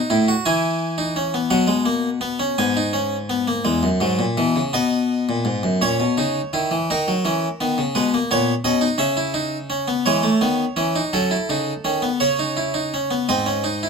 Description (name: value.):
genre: classical, baroque-style 3-part fugue for harpsichord.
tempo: 56 BPM (dotted quarters).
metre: 6/8.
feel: straight.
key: E major, C# minor from 10.1 s.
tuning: A4 = 440 Hz.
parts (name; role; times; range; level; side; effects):
harpsichord; solo; 0.0-13.9 s; E2 to G#5; -18 LUFS; equal; none.
room: moderate studio reverb, RT60 0.7 s.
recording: minimal, uncompressed stereo recording.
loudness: -18 LUFS.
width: side -5 dB against mid.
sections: 0.0-5.8 A section; 5.8-13.9 B section.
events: none.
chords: 0.4 E; 1.5 B5; 2.6 G#m; 3.6 E; 4.7 B; 5.8 A#dim; 6.9 D#m7; 7.9 G#m; 9.0 C#m7; 10.1 C#m; 11.1 D#m7b5; 12.2 C#m9; 13.3 G#.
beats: 0.45 | 1.51 2.58 | 3.65 4.72 | 5.80 6.88 | 7.95 9.00 | 10.05 11.12 | 12.21 13.30.